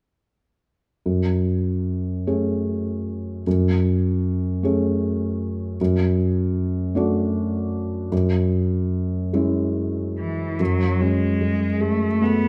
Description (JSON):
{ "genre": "neoclassical piano and strings", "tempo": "50 BPM (dotted quarters)", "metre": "6/8", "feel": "rubato", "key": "F# minor", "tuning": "A4 = 435 Hz", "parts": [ { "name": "felt-muted upright piano", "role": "accompaniment", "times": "1.1-12.5 s", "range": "F#2 to G#4", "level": "-23 LUFS", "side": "equal", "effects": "none" }, { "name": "rich cello", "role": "second line", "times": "10.2-12.5 s", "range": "E3 to B3", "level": "-25 LUFS", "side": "equal", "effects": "none" } ], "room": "wet scoring stage reverb, RT60 1.6 s", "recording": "none", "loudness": "-22 LUFS", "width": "mono", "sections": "1.1-10.6 A section; 10.6-12.5 B section", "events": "none", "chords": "1.1 F#madd9; 5.8 D/F#; 8.1 C#m/F#; 10.6 F#madd9" }